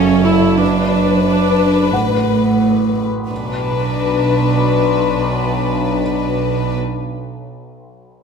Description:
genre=cinematic, suspense film score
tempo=89 BPM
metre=4/4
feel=straight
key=B minor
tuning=A4 = 441 Hz
part: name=dark chamber violin section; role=melody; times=0.0-6.8 s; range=A4 to B4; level=-20 LUFS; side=left 9 dB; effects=none
part: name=rich chamber viola section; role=accompaniment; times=0.0-6.8 s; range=C#4 to E4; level=-19 LUFS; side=equal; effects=none
part: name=warm chamber cello section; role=bass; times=0.0-6.8 s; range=F#2 to B2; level=-18 LUFS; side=right 4 dB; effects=none
part: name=overtone-sweeping drone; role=drone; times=0.0-6.8 s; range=F#1 to B1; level=-25 LUFS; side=left 1 dB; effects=chorus, built-in reverb
part: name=felt-muted upright piano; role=texture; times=0.0-3.3 s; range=F#5 to C#6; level=-28 LUFS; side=left 2 dB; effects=none
part: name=warm chamber double bass section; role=bass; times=1.9-6.8 s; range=A1 to B1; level=-22 LUFS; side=right 5 dB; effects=none
room=moderate concert hall reverb, RT60 1.9 s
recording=minimal, uncompressed stereo recording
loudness=-13 LUFS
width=side -6 dB against mid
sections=0.0-3.3 A section; 3.3-6.0 B section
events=none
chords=0.0 F#m; 0.6 Bm/F#; 1.9 Asus2; 3.3 Bm

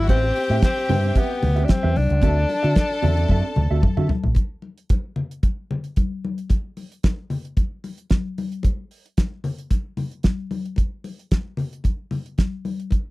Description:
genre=disco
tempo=112 BPM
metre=4/4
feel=straight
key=unclear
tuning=A4 = 440 Hz
part: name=breathy tenor saxophone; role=melody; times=0.0-3.8 s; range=B3 to D4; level=-24 LUFS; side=left 2 dB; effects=none
part: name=rich studio string section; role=second line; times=0.0-4.1 s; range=F#4 to A5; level=-30 LUFS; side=left 2 dB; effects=none
part: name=fingered electric bass with an envelope filter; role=bass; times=0.0-4.3 s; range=A1 to D3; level=-20 LUFS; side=equal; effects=none
part: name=mellow electric guitar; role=accompaniment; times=0.1-4.3 s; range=C4 to E5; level=-29 LUFS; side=right 5 dB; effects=analog chorus
part: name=damped 70s drum kit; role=drums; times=0.1-13.1 s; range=hi-hat, kick drum, snare drum, toms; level=-19 LUFS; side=equal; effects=none
part: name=congas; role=percussion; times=0.1-13.0 s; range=none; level=-29 LUFS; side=left 3 dB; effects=none
room=little or no reverb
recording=dry, close 1970s-style studio recording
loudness=-20 LUFS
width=side -20 dB against mid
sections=0.0-4.4 A section; 4.4-13.1 B section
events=drum fill 3.3-4.4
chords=0.1 Am9; 2.2 D9; 4.4 N.C.

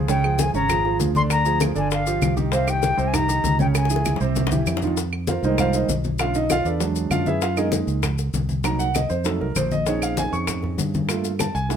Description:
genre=Afro-Cuban jazz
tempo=196 BPM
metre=4/4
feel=straight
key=F minor from 5.0 s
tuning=A4 = 440 Hz
part: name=warm concert grand piano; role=accompaniment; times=0.0-11.8 s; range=C3 to Db6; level=-24 LUFS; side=right 4 dB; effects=none
part: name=fingered electric bass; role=bass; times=0.0-11.8 s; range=G1 to G2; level=-24 LUFS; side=equal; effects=none
part: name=mellow reedy concert flute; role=melody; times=0.1-4.2 s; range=F5 to C6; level=-23 LUFS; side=left 4 dB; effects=none
part: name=bongos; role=percussion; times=0.1-11.8 s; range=none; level=-31 LUFS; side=left 7 dB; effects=none
part: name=congas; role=percussion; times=0.1-11.8 s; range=none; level=-28 LUFS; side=left 3 dB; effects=none
part: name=maracas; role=percussion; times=0.1-11.8 s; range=none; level=-34 LUFS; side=left 8 dB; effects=none
part: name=claves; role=percussion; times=0.2-11.5 s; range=none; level=-32 LUFS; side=right 8 dB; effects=none
room=moderate club reverb, RT60 0.9 s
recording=minimal, uncompressed stereo recording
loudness=-19 LUFS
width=side -8 dB against mid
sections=0.0-5.0 A section; 5.0-11.8 B section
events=drum fill 3.7-5.0; grand piano solo 5.0-11.8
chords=0.1 Db6; 1.3 Ddim; 1.9 G5; 2.5 Cm7; 3.7 Dbm; 4.4 C; 5.0 Fm11; 6.2 Bm7; 6.8 E9; 7.4 Gb69; 8.6 Cm7b5; 9.3 F7b9; 9.9 Bbm11; 11.1 Gm9

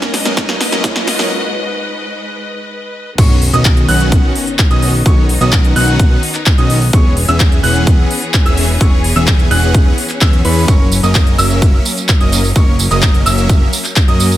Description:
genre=EDM, festival progressive house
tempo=128 BPM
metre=4/4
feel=straight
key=B major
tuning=A4 = 440 Hz
part: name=clear studio string section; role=sustained chords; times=0.0-14.4 s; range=G#2 to D#5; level=-22 LUFS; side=left 2 dB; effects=sidechain pumping
part: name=supersaw chords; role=riff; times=0.0-14.3 s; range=D#3 to F#5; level=-18 LUFS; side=equal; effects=sidechain pumping, dub echo
part: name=big-room dance drum kit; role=drums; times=0.0-14.4 s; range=crash cymbal, handclaps, hi-hat, snare drum, tambourine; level=-18 LUFS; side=equal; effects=none
part: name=riser and sub drop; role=sound effects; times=0.0-5.1 s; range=none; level=-23 LUFS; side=right 1 dB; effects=none
part: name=electronic kick drum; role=drums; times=0.4-14.1 s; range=none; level=-11 LUFS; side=equal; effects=none
part: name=bright grand piano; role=arpeggios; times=3.2-14.3 s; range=B5 to F#6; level=-21 LUFS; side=right 2 dB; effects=sidechain pumping, dub echo
part: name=fat analog bass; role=bass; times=3.2-14.4 s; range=E1 to F#2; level=-15 LUFS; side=equal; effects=tube saturation, sidechain pumping
room=little or no reverb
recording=high-pass filter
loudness=-9 LUFS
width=side -14 dB against mid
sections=0.0-3.2 A section; 3.2-14.4 B section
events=build-up 0.0-3.2; drum fill 0.0-1.3; riser 0.0-1.3; break 1.3-3.2; drop 3.2-14.4; impact 3.2-5.1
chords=0.0 G#m; 3.2 Badd9; 6.9 E6; 10.7 F#

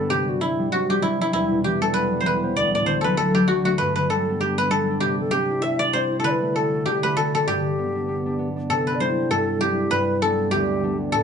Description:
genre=celtic folk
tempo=196 BPM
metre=4/4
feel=swing 57% on 8ths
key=G major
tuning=A4 = 440 Hz
part: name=koto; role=melody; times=0.0-11.2 s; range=E4 to E5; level=-23 LUFS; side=equal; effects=none
part: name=hollow wooden flute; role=second line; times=0.0-11.2 s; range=E4 to E5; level=-26 LUFS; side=left 1 dB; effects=none
part: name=concert harp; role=accompaniment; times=0.0-11.2 s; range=D2 to F#4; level=-24 LUFS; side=equal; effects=none
room=moderate studio ambience, RT60 0.5 s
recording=nothing above 10.7 kHz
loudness=-19 LUFS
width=side -7 dB against mid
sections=0.0-8.7 A section; 8.7-11.2 B section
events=none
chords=0.1 C; 1.3 Em; 2.6 D; 3.8 G; 5.0 C; 6.2 D; 7.5 G; 8.7 C; 9.9 G

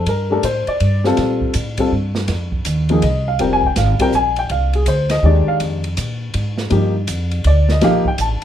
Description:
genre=modal jazz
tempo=163 BPM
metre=3/4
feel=swing 65% on 8ths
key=unclear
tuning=A4 = 440 Hz
part: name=warm baby grand piano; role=accompaniment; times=0.0-8.4 s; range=Eb3 to A5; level=-17 LUFS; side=left 1 dB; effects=none
part: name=upright bass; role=bass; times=0.0-8.4 s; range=F1 to Bb2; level=-18 LUFS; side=equal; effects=none
part: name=open jazz drum kit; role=drums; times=0.1-8.4 s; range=hi-hat, kick drum, ride cymbal, snare drum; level=-25 LUFS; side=right 1 dB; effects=none
room=moderate club reverb, RT60 0.6 s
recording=none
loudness=-15 LUFS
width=side -10 dB against mid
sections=0.0-8.4 A section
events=none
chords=0.0 Gm9; 2.3 Fm9; 6.7 Gm9

